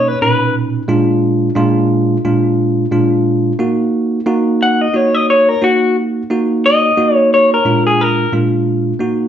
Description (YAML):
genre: blues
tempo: 89 BPM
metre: 4/4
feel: swing 54% on 16ths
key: Eb minor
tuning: A4 = 438 Hz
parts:
  - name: electric guitar through a small old amp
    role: melody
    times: 0.0-0.5, 4.6-8.3 s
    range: Gb4 to Gb5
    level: -12 LUFS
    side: left 2 dB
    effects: none
  - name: bell-like tine electric piano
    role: accompaniment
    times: 0.0-9.3 s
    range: A#2 to Gb4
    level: -14 LUFS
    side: right 1 dB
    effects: none
room: wet large studio reverb, RT60 0.9 s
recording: band playing live in one room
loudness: -11 LUFS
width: side -9 dB against mid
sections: 0.0-9.0 A section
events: clean electric guitar solo 0.0-9.3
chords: 0.0 Bmaj7; 0.9 Bb7; 3.6 Ebm; 7.6 Bb7